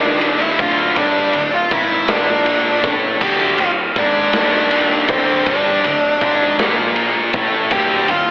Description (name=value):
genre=quiet-loud alternative rock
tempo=53 BPM (dotted quarters)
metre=6/8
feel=straight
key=D minor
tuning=A4 = 440 Hz
part: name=fuzz lead guitar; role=melody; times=0.0-8.3 s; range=C4 to G5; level=-17 LUFS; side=equal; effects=distortion, slapback echo
part: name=thick fuzz guitar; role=riff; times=0.0-8.3 s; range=D2 to Bb3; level=-18 LUFS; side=equal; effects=distortion, slapback echo
part: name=growling fingered electric bass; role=bass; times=0.0-8.3 s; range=D1 to Bb1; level=-29 LUFS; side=equal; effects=overdrive
part: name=raw garage drum kit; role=drums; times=0.2-8.3 s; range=crash cymbal, kick drum, ride cymbal, snare drum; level=-19 LUFS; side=equal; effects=none
room=wet concert hall reverb, RT60 2.2 s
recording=big arena sound, telephone sound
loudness=-13 LUFS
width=side -22 dB against mid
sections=0.0-8.3 A section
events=none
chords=0.0 Dm